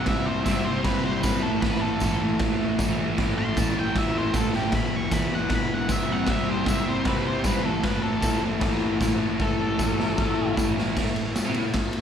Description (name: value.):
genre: garage rock duo or trio.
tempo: 154 BPM.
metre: 4/4.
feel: straight.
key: unclear.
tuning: A4 = 439 Hz.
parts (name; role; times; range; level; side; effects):
octave-fuzz lead guitar; melody; 0.0-10.5 s; G4 to C#6; -30 LUFS; left 1 dB; distortion, slapback echo.
overdriven combo organ; sustained chords; 0.0-12.0 s; E4 to C#5; -36 LUFS; left 2 dB; none.
fuzz guitar; riff; 0.0-11.6 s; E2 to C4; -26 LUFS; equal; distortion, slapback echo.
raw garage drum kit; drums; 0.1-12.0 s; crash cymbal, kick drum, ride cymbal, snare drum; -26 LUFS; equal; none.
tambourine; percussion; 0.5-11.4 s; none; -39 LUFS; left 1 dB; none.
room: light reverb, small room ambience.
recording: live gig heard through the venue's PA, recital hall reverb.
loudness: -22 LUFS.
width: side -8 dB against mid.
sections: 0.0-11.0 A section; 11.0-12.0 B section.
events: drum fill 4.5, 9.4-11.0.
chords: 0.0 C; 1.4 A; 4.7 E; 6.1 C; 7.6 A.